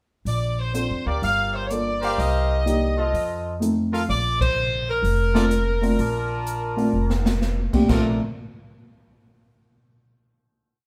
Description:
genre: jazz, big band swing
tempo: 126 BPM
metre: 4/4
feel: swing 67% on 8ths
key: Bb major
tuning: A4 = 440 Hz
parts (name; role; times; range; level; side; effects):
- edgy saxophone section; melody; 0.3-8.2 s; F3 to F5; -28 LUFS; equal; none
- upright bass; bass; 0.3-8.2 s; F1 to F2; -27 LUFS; equal; none
- swinging big-band drum kit; drums; 0.3-8.0 s; crash cymbal, hi-hat, kick drum, ride cymbal, snare drum; -29 LUFS; equal; none
- warm baby grand piano; accompaniment; 0.7-8.2 s; Bb2 to A4; -25 LUFS; equal; none
- mellow trumpet section; stabs; 1.1-8.1 s; F4 to A5; -31 LUFS; equal; none
room: wet small room reverb, RT60 0.5 s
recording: band playing live in one room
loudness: -22 LUFS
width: mono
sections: 0.3-7.9 A section; 7.9-9.8 final chord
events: band accent 4.3; drum fill 6.9-7.4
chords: 0.3 Bbmaj7; 1.2 Gm7; 2.2 Cm7; 3.1 F7; 4.1 Bbmaj7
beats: | 0.27 0.74 1.22 1.70 | 2.18 2.66 3.13 3.61 | 4.08 4.56 5.04 5.51 | 5.99 6.46 6.94 7.41 | 7.89

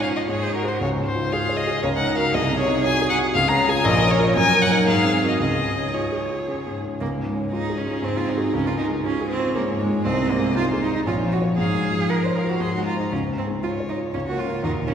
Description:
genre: quick classical-period movement for piano trio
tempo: 118 BPM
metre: 3/4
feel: rubato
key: Db major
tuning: A4 = 440 Hz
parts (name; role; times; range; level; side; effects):
- warm violin; melody; 0.0-14.9 s; Ab4 to C6; -24 LUFS; left 2 dB; none
- rich cello; second line; 0.0-14.9 s; Ab3 to C5; -26 LUFS; right 3 dB; none
- warm grand piano; accompaniment; 0.0-14.9 s; Bb1 to Db5; -22 LUFS; equal; none
room: wet concert hall reverb, RT60 2.1 s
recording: recorded in a church or concert hall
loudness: -19 LUFS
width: side -8 dB against mid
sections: 0.0-7.0 A section; 7.0-14.9 A section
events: none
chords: 0.3 Ab; 0.8 Db; 1.8 Ebm7/Db; 2.3 Ab7/C; 3.4 Db; 3.9 Bbm; 4.4 Ebm7/Gb; 4.9 Ab9; 5.4 Db; 8.0 Ab7; 8.5 Db; 10.1 Ab/C; 11.1 Bbm; 11.6 Db/Ab; 12.6 Ab; 13.1 Db; 14.1 Bbm/Db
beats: 0.29 | 0.81 1.33 1.84 | 2.35 2.85 3.35 | 3.85 4.36 4.87 | 5.40 5.94 6.47 | 7.01 7.52 8.03 | 8.53 9.04 9.55 | 10.05 10.56 11.06 | 11.58 12.09 12.60 | 13.12 13.64 14.14 | 14.64

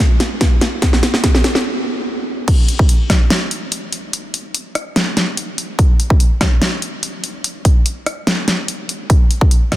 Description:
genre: future bass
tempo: 145 BPM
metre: 4/4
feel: half-time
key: none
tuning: none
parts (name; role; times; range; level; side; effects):
- big-room dance drum kit; drums; 0.2-9.8 s; crash cymbal, hi-hat, rim click, snare drum; -18 LUFS; equal; studio reverb, soft clipping on snare
- electronic kick drum; drums; 0.4-3.2, 5.8-9.8 s; none; -12 LUFS; equal; studio reverb
room: light reverb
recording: dense, heavily limited modern master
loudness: -14 LUFS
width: side -15 dB against mid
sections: 0.0-2.5 A section; 2.5-9.8 B section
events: build-up 0.0-2.5; drum fill 0.0-1.6; stop 1.6-2.5; drop 2.5-9.8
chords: none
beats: 0.41 | 0.82 1.24 1.65 2.06 | 2.48 2.89 3.31 3.72 | 4.13 4.55 4.96 5.37 | 5.79 6.20 6.62 7.03 | 7.44 7.86 8.27 8.68 | 9.10 9.51

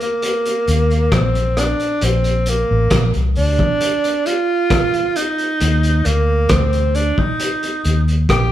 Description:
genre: roots reggae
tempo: 67 BPM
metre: 4/4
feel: straight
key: unclear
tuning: A4 = 440 Hz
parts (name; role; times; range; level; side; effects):
- breathy tenor saxophone; melody; 0.0-8.5 s; Bb3 to G4; -18 LUFS; right 1 dB; none
- crunchy breakbeat drum kit; drums; 0.0-8.5 s; hi-hat, kick drum, rim click; -20 LUFS; equal; none
- vintage muted fingered electric bass; bass; 0.7-8.5 s; A1 to Eb2; -16 LUFS; equal; none
room: moderate large studio reverb, RT60 1.1 s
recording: band playing live in one room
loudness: -14 LUFS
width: side -12 dB against mid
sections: 0.0-8.5 A section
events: none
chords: 0.0 Eb5; 2.0 Bb; 5.6 Eb5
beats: 0.22 1.12 | 2.02 2.91 3.81 4.71 | 5.60 6.50 7.40 8.29

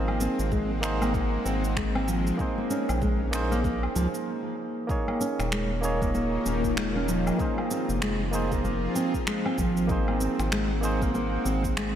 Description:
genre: organic downtempo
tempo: 96 BPM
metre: 4/4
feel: swing 60% on 16ths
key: unclear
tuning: A4 = 444 Hz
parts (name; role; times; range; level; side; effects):
- barky tine electric piano; accompaniment; 0.0-12.0 s; Bb3 to Db5; -31 LUFS; right 2 dB; overdrive, sidechain pumping, tape echo
- bowed-like drone; sustained chords; 0.0-12.0 s; Eb3 to Gb5; -33 LUFS; left 2 dB; built-in reverb, sidechain pumping
- round analog bass; bass; 0.0-12.0 s; Eb1 to Db2; -30 LUFS; equal; tube saturation
- nylon-string guitar; arpeggios; 0.1-11.9 s; F3 to Db4; -30 LUFS; equal; low-pass filter, tape echo
- electronic woodblock, shaker and finger snaps; drums; 0.1-11.9 s; none; -35 LUFS; equal; none
- electronic kick drum; drums; 0.5-11.7 s; none; -31 LUFS; equal; none
room: moderate cathedral reverb, RT60 4.8 s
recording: dreamy mix soaked in reverb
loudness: -24 LUFS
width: side -10 dB against mid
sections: 0.0-4.9 A section; 4.9-12.0 A section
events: stop 4.3-4.9; filter sweep on nylon-string guitar 4.9-12.0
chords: 0.0 Ab13; 2.4 Bbm7; 4.9 Eb5; 7.4 Fm7; 9.9 Ab9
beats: 0.52 1.14 1.77 | 2.39 3.02 3.64 4.27 | 4.89 5.52 6.14 6.77 | 7.39 8.02 8.64 9.27 | 9.89 10.52 11.14 11.77

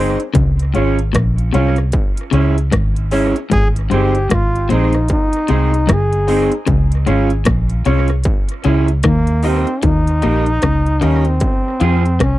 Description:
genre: roots reggae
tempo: 76 BPM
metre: 4/4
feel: swing 61% on 16ths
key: unclear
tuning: A4 = 436 Hz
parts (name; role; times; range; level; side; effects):
- electric guitar through a small old amp; accompaniment; 0.0-12.0 s; G3 to Ab4; -22 LUFS; right 6 dB; dub echo
- bright upright piano; stabs; 0.0-12.0 s; C4 to F5; -22 LUFS; left 4 dB; none
- vintage muted fingered electric bass; bass; 0.0-12.4 s; G1 to F2; -15 LUFS; equal; none
- industrial drum kit; drums; 0.2-12.4 s; hi-hat, kick drum, rim click; -18 LUFS; equal; distortion
- clean electric guitar; riff; 0.3-12.4 s; G2 to F3; -22 LUFS; left 6 dB; none
- breathy trombone; melody; 3.5-12.4 s; Bb3 to Ab4; -20 LUFS; equal; tube saturation, dub echo
room: little or no reverb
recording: dry, close 1970s-style studio recording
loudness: -13 LUFS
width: side -16 dB against mid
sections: 0.0-9.8 A section; 9.8-12.4 B section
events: none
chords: 0.3 Db; 1.9 Dbm; 3.5 Ab; 6.7 Db; 8.3 Dbm; 9.0 Eb; 11.4 Fm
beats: | 0.35 1.14 1.93 2.73 | 3.52 4.31 5.10 5.89 | 6.68 7.47 8.26 9.05 | 9.84 10.63 11.42 12.20

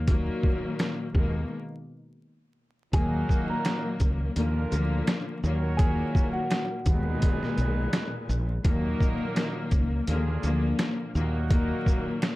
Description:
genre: hip hop, boom-bap hip-hop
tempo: 84 BPM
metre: 4/4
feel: swing 58% on 16ths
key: Eb minor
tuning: A4 = 441 Hz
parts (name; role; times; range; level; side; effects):
- woody fretless electric bass; bass; 0.0-11.7 s; Bb1 to Eb2; -27 LUFS; equal; none
- warm symphonic string section; accompaniment; 0.1-12.4 s; Eb2 to Bb3; -30 LUFS; left 2 dB; high-pass filter, low-pass filter
- trip hop sampler-style drum kit; drums; 0.1-12.4 s; hi-hat, kick drum, shaker, snare drum; -26 LUFS; equal; none
- mellow electric guitar; melody; 2.9-8.1 s; Gb4 to Bb5; -34 LUFS; equal; high-pass filter, low-pass filter
- bright trumpet section; stabs; 2.9-12.2 s; Bb3 to Db5; -38 LUFS; right 5 dB; high-pass filter, low-pass filter, ping-pong delay
- finger snap; percussion; 3.6-12.4 s; none; -42 LUFS; right 5 dB; none
room: little or no reverb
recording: dark, warm production, vinyl crackle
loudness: -24 LUFS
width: side -18 dB against mid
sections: 0.0-2.9 A section; 2.9-12.4 B section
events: break 1.5-2.9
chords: 0.0 Ebm; 1.1 Abmadd9/Eb; 2.2 N.C.; 2.9 Ebm; 4.4 Bb; 5.4 Ebm; 6.9 Abmadd9; 8.6 Ebm; 10.1 Bb; 11.1 Ebm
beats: | 0.08 0.79 1.51 2.22 | 2.93 3.65 4.36 5.08 | 5.79 6.51 7.22 7.93 | 8.65 9.36 10.08 10.79 | 11.51 12.22

